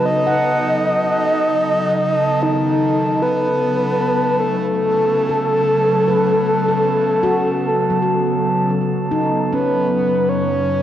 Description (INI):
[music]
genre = ambient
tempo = 76 BPM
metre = 4/4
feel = straight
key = unclear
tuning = A4 = 440 Hz
[part]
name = breathy flute-like synth lead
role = melody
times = 0.0-10.8 s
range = D#4 to D#5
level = -18 LUFS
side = equal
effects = chorus, cassette tape, tape echo
[part]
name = glassy FM pad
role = sustained chords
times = 0.0-10.8 s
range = C#3 to D#4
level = -21 LUFS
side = left 1 dB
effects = ensemble chorus, built-in reverb, cassette tape
[part]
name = handpan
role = arpeggios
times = 0.0-10.8 s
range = F#3 to F#5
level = -24 LUFS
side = equal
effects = cassette tape, tape echo
[part]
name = glass harmonica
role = texture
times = 0.0-9.5 s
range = A4 to A5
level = -23 LUFS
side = equal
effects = cassette tape
[part]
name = warm sub bass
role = bass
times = 9.5-10.8 s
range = F#2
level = -32 LUFS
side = equal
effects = none
[sound]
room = wet lush hall reverb, RT60 2.3 s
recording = home recording on cassette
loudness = -15 LUFS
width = side -11 dB against mid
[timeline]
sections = 0.0-9.5 A section; 9.5-10.8 B section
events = filter sweep on ambient pad 0.0-9.5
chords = 0.0 B7/C#; 9.5 F#m